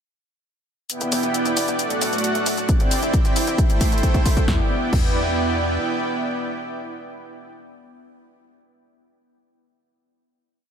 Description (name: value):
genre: uplifting trance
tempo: 134 BPM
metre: 4/4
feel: straight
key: E minor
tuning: A4 = 440 Hz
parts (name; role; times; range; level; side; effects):
- supersaw pad; sustained chords; 0.9-7.5 s; A3 to G5; -23 LUFS; right 1 dB; sidechain pumping
- techno drum kit; drums; 0.9-5.1 s; crash cymbal, hi-hat, shaker, snare drum; -27 LUFS; equal; none
- tight sequencer bass; bass; 1.0-5.8 s; A1 to E2; -29 LUFS; equal; sidechain pumping, high-pass filter
- electronic kick drum; drums; 2.7-5.1 s; none; -18 LUFS; equal; none
room: light reverb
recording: none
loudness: -18 LUFS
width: side -8 dB against mid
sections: 0.9-4.5 build; 4.5-8.1 final chord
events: build-up 0.9-4.5; drum fill 2.7-4.5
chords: 0.9 Em7; 1.8 D; 2.7 Cadd9; 3.6 Am7; 4.5 Em7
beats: | 0.90 1.34 1.79 2.24 | 2.69 3.13 3.58 4.03 | 4.48 4.93 5.37 5.82 | 6.27 6.72 7.17